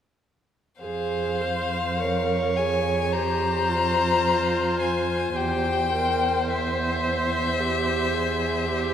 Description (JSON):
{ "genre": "classical, slow romantic movement for string quartet", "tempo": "51-56 BPM", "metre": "4/4", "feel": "rubato", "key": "F minor", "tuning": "A4 = 440 Hz", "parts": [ { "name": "rich violin", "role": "melody", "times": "0.8-8.9 s", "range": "E5 to Bb5", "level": "-26 LUFS", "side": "left 6 dB", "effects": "none" }, { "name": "rich violin", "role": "second line", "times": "0.8-8.9 s", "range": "C5 to Db5", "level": "-28 LUFS", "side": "equal", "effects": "none" }, { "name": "rich viola", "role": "accompaniment", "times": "0.8-8.9 s", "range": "F4 to C5", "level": "-28 LUFS", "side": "right 3 dB", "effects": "none" }, { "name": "warm cello", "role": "bass", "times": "0.8-8.9 s", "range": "E2 to F2", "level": "-29 LUFS", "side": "right 3 dB", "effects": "none" } ], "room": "wet concert hall reverb, RT60 2.5 s", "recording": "none", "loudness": "-22 LUFS", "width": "side -9 dB against mid", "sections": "0.8-8.9 A section", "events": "none", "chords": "0.8 Fm; 5.4 C/E" }